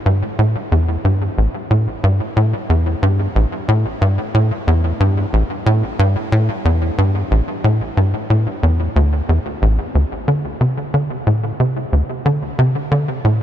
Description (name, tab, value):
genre	ambient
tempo	91 BPM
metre	4/4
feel	straight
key	unclear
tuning	A4 = 440 Hz
part	tight sequencer bass	solo	0.1-13.4 s	A1 to D3	-15 LUFS	equal	wide subtle chorus, analog delay
room	light reverb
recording	none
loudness	-15 LUFS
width	side -11 dB against mid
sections	0.0-13.4 A section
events	none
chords	none